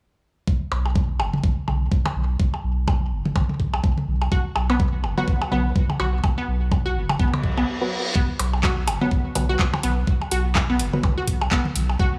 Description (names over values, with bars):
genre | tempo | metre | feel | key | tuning
minimal techno | 125 BPM | 4/4 | swing 58% on 16ths | unclear | A4 = 440 Hz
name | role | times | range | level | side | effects
electronic kick drum | drums | 0.5-12.1 s | none | -23 LUFS | equal | none
saturated sub bass | bass | 0.7-12.0 s | F#1 to B1 | -26 LUFS | equal | sidechain pumping
electronic percussion blips and toms | percussion | 0.7-12.0 s | none | -30 LUFS | equal | overdrive, digital delay
resonant blip pluck | riff | 4.3-12.1 s | B3 to F#4 | -30 LUFS | equal | chorus, sidechain pumping, dub echo
filtered dub chord stab | stabs | 5.2-11.0 s | F#3 to B4 | -31 LUFS | equal | chorus, digital delay
reverse cymbal | sound effects | 7.4-8.2 s | none | -32 LUFS | equal | none
booming analog drum machine | drums | 8.4-11.9 s | handclaps, hi-hat | -29 LUFS | equal | none
room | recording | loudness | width
light reverb, digital ambience | small room reverb | -22 LUFS | mono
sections
0.5-8.2 A section; 8.2-12.2 B section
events
reverse cymbal 7.4-8.2; break 7.7-8.2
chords
0.5 B5